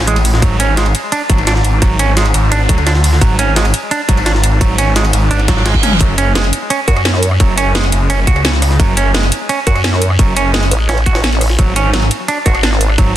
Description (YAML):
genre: dark technical drum and bass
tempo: 172 BPM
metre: 4/4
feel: straight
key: unclear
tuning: A4 = 440 Hz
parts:
  - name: snarling distorted saw bass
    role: bass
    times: 0.0-13.2 s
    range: F#1 to D2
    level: -13 LUFS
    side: equal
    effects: distortion, overdrive, sidechain pumping
  - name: semi-hollow electric guitar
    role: arpeggios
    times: 0.1-13.1 s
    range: F#3 to F#4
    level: -17 LUFS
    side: right 4 dB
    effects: sidechain pumping, low-pass filter, ping-pong delay
  - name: drum and bass drum kit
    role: drums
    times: 0.1-13.1 s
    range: hi-hat, rim click, snare drum, toms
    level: -18 LUFS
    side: equal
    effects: none
  - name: jungle sampler-style drum kit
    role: drums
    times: 0.1-13.1 s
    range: hi-hat, ride cymbal, snare drum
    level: -22 LUFS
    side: right 1 dB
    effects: overdrive, high-pass filter on snare, high-pass filter on cymbals, high-pass filter on hats
  - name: electronic kick drum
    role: drums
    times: 0.4-13.1 s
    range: none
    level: -12 LUFS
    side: equal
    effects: none
  - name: reverse cymbal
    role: sound effects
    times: 5.5-6.0 s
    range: none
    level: -21 LUFS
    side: right 5 dB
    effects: none
  - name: vowel-sweep wobble bass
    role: bass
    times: 6.9-7.4, 9.7-13.0 s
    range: G#1 to F#2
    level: -13 LUFS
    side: equal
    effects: chorus, tube saturation
room: light reverb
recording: dense, heavily limited modern master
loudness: -10 LUFS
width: side -12 dB against mid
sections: 0.0-13.2 A section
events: reverse cymbal 5.5-6.0; drum fill 5.8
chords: 0.4 G#7(no3); 6.0 F#m; 11.6 G#7(no3)